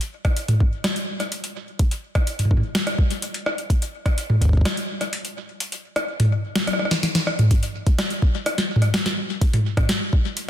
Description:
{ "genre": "IDM", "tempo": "126 BPM", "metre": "4/4", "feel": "straight", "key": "none", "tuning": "none", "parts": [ { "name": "booming analog drum machine", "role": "drums", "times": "0.0-10.5 s", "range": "hi-hat, rim click, snare drum, toms", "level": "-22 LUFS", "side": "equal", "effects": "ping-pong delay" }, { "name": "electronic kick drum", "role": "drums", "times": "0.2-4.6, 7.5-10.2 s", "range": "none", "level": "-18 LUFS", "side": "equal", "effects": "none" } ], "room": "light reverb", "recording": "dense, heavily limited modern master", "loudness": "-20 LUFS", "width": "side -11 dB against mid", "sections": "0.0-7.5 A section; 7.5-10.5 B section", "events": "kick drops out 5.6-7.5; drum fill 6.6-7.5", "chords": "none", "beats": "0.37 0.84 1.32 | 1.79 2.27 2.75 3.22 | 3.70 4.17 4.65 5.13 | 5.60 6.08 6.56 7.03 | 7.51 7.99 8.46 8.94 | 9.41 9.89 10.37" }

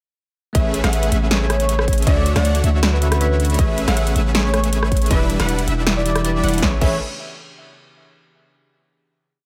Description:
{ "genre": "future bass", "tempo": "158 BPM", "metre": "4/4", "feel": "half-time", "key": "A major", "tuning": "A4 = 437 Hz", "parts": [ { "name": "warm velvety synth lead", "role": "melody", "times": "0.5-7.0 s", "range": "B4 to E5", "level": "-28 LUFS", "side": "equal", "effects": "chorus, sidechain pumping, digital delay" }, { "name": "bell-like tine electric piano", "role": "accompaniment", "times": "0.5-7.0 s", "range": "D3 to E5", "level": "-29 LUFS", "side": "equal", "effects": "sidechain pumping, delay" }, { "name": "airy breathy pad", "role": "sustained chords", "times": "0.5-6.8 s", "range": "C#3 to C#5", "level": "-37 LUFS", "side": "equal", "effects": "none" }, { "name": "unison pluck", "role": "arpeggios", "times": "0.5-7.0 s", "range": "E5 to F#5", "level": "-34 LUFS", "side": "equal", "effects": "sidechain pumping, delay" }, { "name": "supersaw chords", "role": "riff", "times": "0.5-7.0 s", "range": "G3 to F#5", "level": "-27 LUFS", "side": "equal", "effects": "sidechain pumping" }, { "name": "long sustained 808-style bass", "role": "bass", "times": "0.5-7.0 s", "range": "E1 to D2", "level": "-22 LUFS", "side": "equal", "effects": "sidechain pumping" }, { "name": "big-room dance drum kit", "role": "drums", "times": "0.5-6.9 s", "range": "crash cymbal, hi-hat, rim click, snare drum", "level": "-25 LUFS", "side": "equal", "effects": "none" }, { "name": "electronic kick drum", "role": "drums", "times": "0.5-6.9 s", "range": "none", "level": "-21 LUFS", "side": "equal", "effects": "none" } ], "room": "light reverb", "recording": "none", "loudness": "-18 LUFS", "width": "mono", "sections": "0.5-6.6 drop; 6.6-8.1 final chord", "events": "drop 0.5-6.6", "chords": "0.5 Amaj9; 2.1 Dmaj9; 3.6 Amaj9; 5.1 Em7; 6.6 Amaj9", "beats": "| 0.55 0.93 1.31 1.69 | 2.07 2.45 2.83 3.21 | 3.59 3.97 4.35 4.73 | 5.11 5.49 5.87 6.25 | 6.62" }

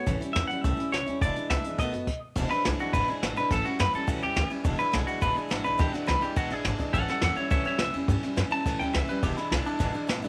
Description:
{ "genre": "rockabilly", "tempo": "210 BPM", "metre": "4/4", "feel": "straight", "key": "E mixolydian", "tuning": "A4 = 442 Hz", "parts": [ { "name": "semi-hollow electric guitar", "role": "melody", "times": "0.0-10.2 s", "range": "D4 to A5", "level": "-32 LUFS", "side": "equal", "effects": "tape echo" }, { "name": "picked steel-string acoustic guitar", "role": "accompaniment", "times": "0.0-10.3 s", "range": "E2 to F#4", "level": "-35 LUFS", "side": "equal", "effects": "none" }, { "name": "upright bass", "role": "bass", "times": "0.1-10.3 s", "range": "E1 to G2", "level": "-33 LUFS", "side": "equal", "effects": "none" }, { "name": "jazz brush drum kit", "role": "drums", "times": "0.1-10.3 s", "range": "crash cymbal, hi-hat, kick drum, ride cymbal, snare drum", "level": "-33 LUFS", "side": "equal", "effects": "none" } ], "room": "small room ambience", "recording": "none", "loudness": "-27 LUFS", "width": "mono", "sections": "0.0-2.4 A section; 2.4-10.3 B section", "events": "stop 2.1; clean electric guitar solo 2.4-10.3", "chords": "0.1 A7; 1.2 E7; 1.8 B7; 2.4 E7; 3.5 A7; 4.7 E7; 6.9 A7; 9.2 E7", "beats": "| 0.07 0.35 0.64 0.93 | 1.21 1.50 1.79 2.08 | 2.36 2.65 2.94 3.22 | 3.51 3.79 4.08 4.37 | 4.65 4.94 5.22 5.51 | 5.80 6.08 6.37 6.66 | 6.94 7.23 7.51 7.80 | 8.09 8.37 8.66 8.95 | 9.23 9.52 9.80 10.09" }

